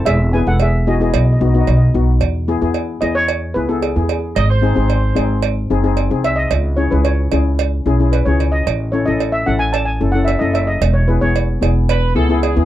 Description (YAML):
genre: calypso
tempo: 112 BPM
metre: 4/4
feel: straight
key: E major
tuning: A4 = 441 Hz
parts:
  - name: steel pan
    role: melody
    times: 0.0-12.5 s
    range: F#4 to A5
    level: -21 LUFS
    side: equal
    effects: none
  - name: steel pan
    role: accompaniment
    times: 0.0-12.7 s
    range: B3 to A4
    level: -20 LUFS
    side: left 5 dB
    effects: none
  - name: upright bass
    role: bass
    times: 0.0-12.7 s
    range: E1 to E2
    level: -16 LUFS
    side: equal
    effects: none
  - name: cowbell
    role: percussion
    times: 0.1-12.6 s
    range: none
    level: -22 LUFS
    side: right 16 dB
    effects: none
  - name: warm horn section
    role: second line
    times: 4.4-5.5, 11.9-12.7 s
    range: G#4 to D#5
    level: -22 LUFS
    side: right 4 dB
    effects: none
room: little or no reverb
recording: dry, close 1970s-style studio recording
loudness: -13 LUFS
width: side -13 dB against mid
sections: 0.0-2.2 A section; 2.2-12.7 B section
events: steel pan solo 2.2-12.7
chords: 0.1 E; 1.1 B; 2.2 E; 4.4 G#; 6.5 C#m; 8.7 A; 10.8 E